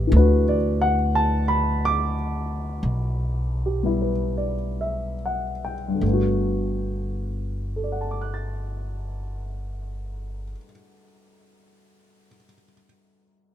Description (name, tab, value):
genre	jazz ballad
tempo	34-47 BPM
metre	4/4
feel	swing 66% on 8ths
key	G major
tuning	A4 = 438 Hz
part	dark baby grand piano	accompaniment	0.0-13.5 s	G2 to A6	-25 LUFS	left 1 dB	none
part	upright bass	bass	0.0-10.5 s	G1 to D2	-24 LUFS	equal	none
room	little or no reverb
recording	minimal, uncompressed stereo recording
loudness	-22 LUFS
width	side -10 dB against mid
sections	0.0-6.0 A section; 6.0-12.9 B section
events	slowing down 0.0-6.0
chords	0.0 Gmaj7